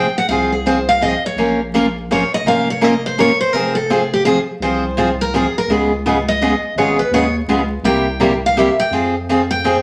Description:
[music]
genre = acoustic string swing (jazz manouche)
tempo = 167 BPM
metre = 3/4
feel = swing 62% on 8ths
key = F minor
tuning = A4 = 440 Hz
[part]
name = picked steel-string acoustic guitar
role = melody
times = 0.0-9.8 s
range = G4 to G5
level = -20 LUFS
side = equal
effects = none
[part]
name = picked steel-string acoustic guitar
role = accompaniment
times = 0.0-9.8 s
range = C3 to Bb4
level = -18 LUFS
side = equal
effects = none
[part]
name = saturated sub bass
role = bass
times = 0.0-9.8 s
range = F1 to F2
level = -27 LUFS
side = equal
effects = none
[sound]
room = wet studio reverb, RT60 0.8 s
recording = vinyl crackle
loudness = -16 LUFS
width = mono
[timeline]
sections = 0.0-9.8 A section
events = steel-string acoustic guitar solo 0.0-9.8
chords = 0.0 Fm; 1.4 Bbm; 3.5 Fm; 5.7 Db7; 7.8 C7; 8.9 Fm

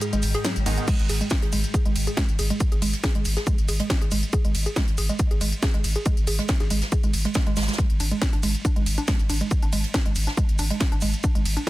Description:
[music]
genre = driving peak-time techno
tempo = 139 BPM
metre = 4/4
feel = straight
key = unclear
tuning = A4 = 440 Hz
[part]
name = woody wave-folded pluck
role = riff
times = 0.0-11.7 s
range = F#3 to G#4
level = -30 LUFS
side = right 2 dB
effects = chorus, cassette tape, sidechain pumping, dub echo
[part]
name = metallic inharmonic drone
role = drone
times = 0.0-0.9 s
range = G#2 to G#3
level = -34 LUFS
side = left 1 dB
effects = chorus, built-in reverb, sidechain pumping
[part]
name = jazz brush drum kit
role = drums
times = 0.0-11.7 s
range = hi-hat, shaker, snare drum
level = -35 LUFS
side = right 2 dB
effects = sidechain pumping on hats, high-pass filter on hats, soft clipping on snare, high-pass filter on snare, sidechain pumping on perc, high-pass filter on perc, high-pass filter on room
[part]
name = techno drum kit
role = drums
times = 0.0-11.7 s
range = crash cymbal, hi-hat, ride cymbal, snare drum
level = -30 LUFS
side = equal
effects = overdrive
[part]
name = saturated sub bass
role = bass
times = 0.1-11.6 s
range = G#1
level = -25 LUFS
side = equal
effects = overdrive, sidechain pumping, low-pass filter
[part]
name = supersaw stab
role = stabs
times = 0.7-0.9 s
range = D#3 to D#4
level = -36 LUFS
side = right 4 dB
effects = sidechain pumping, tape echo
[part]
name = electronic kick drum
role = drums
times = 0.9-11.7 s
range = none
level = -22 LUFS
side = equal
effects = overdrive
[sound]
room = studio reverb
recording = dense, heavily limited modern master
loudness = -21 LUFS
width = side -17 dB against mid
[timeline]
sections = 0.9-11.7 A section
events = break 0.0-0.9; drop 0.9-11.7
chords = 0.0 G#5

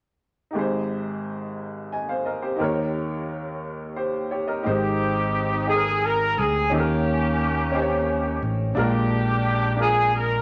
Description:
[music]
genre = slow gospel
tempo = 58 BPM (dotted quarters)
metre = 6/8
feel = straight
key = Ab major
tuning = A4 = 440 Hz
[part]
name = clear baby grand piano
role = accompaniment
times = 0.5-10.4 s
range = Ab1 to Ab5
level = -28 LUFS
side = equal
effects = none
[part]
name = clear horn section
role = melody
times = 4.7-10.4 s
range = Bb3 to Bb4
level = -25 LUFS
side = equal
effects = none
[part]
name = fingered electric bass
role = bass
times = 4.7-10.4 s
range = Ab1 to Eb2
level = -28 LUFS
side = equal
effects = none
[sound]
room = moderate studio reverb, RT60 0.7 s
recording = none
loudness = -24 LUFS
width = mono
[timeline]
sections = 0.6-4.7 A section; 4.7-10.4 B section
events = none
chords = 0.6 Abmaj7; 2.6 Eb7; 4.7 Abmaj7; 6.7 Eb7; 8.8 Bb7

